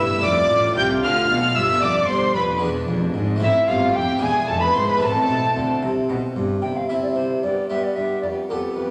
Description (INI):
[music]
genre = classical, baroque-style concerto movement with solo episodes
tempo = 75 BPM (dotted quarters)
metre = 6/8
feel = straight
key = A minor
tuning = A4 = 440 Hz
[part]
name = alto recorder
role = melody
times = 0.0-8.9 s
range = A4 to G6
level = -27 LUFS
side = equal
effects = none
[part]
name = rich chamber violin section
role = melody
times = 0.0-8.9 s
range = E4 to G6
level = -26 LUFS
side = equal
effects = none
[part]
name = warm chamber violin section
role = second line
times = 0.0-8.9 s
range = B3 to G5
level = -28 LUFS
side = equal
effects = none
[part]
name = dark chamber viola section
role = accompaniment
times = 0.0-8.9 s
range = G3 to F4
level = -32 LUFS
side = equal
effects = none
[part]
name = harpsichord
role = accompaniment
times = 0.0-8.9 s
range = E2 to A4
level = -28 LUFS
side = equal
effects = none
[part]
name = rich chamber cello section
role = bass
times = 0.0-8.8 s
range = E2 to D3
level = -31 LUFS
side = equal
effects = none
[part]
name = rich chamber double bass section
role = bass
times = 0.0-6.6 s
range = E1 to D2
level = -31 LUFS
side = equal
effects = none
[sound]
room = wet recital hall reverb, RT60 1.4 s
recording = none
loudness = -20 LUFS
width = mono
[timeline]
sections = 0.0-6.6 A section; 6.6-8.9 B section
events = none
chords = 0.2 Dm/F; 1.8 Bm7b5/F; 2.6 E7; 3.4 Am; 4.2 E7; 5.0 Am; 6.6 C; 7.4 G; 8.2 G7/F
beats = | 0.24 1.03 | 1.83 2.62 | 3.42 4.21 | 5.02 5.83 | 6.64 7.44 | 8.24